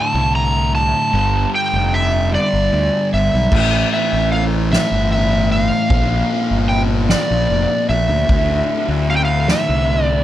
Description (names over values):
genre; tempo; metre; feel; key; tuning
psychedelic rock; 50 BPM (dotted quarters); 6/8; straight; D minor; A4 = 440 Hz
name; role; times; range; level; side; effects
overdriven slide guitar; melody; 0.0-10.2 s; D5 to Bb5; -19 LUFS; right 1 dB; analog delay
fuzz guitar; riff; 0.0-10.2 s; D2 to Bb3; -20 LUFS; left 1 dB; distortion, phaser
fuzz fingered electric bass; bass; 0.1-10.2 s; F1 to D2; -19 LUFS; equal; overdrive
soft-mallet drum kit; drums; 3.5-10.1 s; crash cymbal, kick drum, ride cymbal, snare drum; -21 LUFS; left 1 dB; none
room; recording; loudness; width
studio ambience; none; -14 LUFS; side -12 dB against mid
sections
0.0-10.2 A section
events
none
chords
0.0 D7(no3); 1.1 G7(no3); 3.5 A5; 5.9 Bb6; 8.3 D5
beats
| 1.13 2.32 | 3.51 4.71 | 5.90 7.10 | 8.29 9.49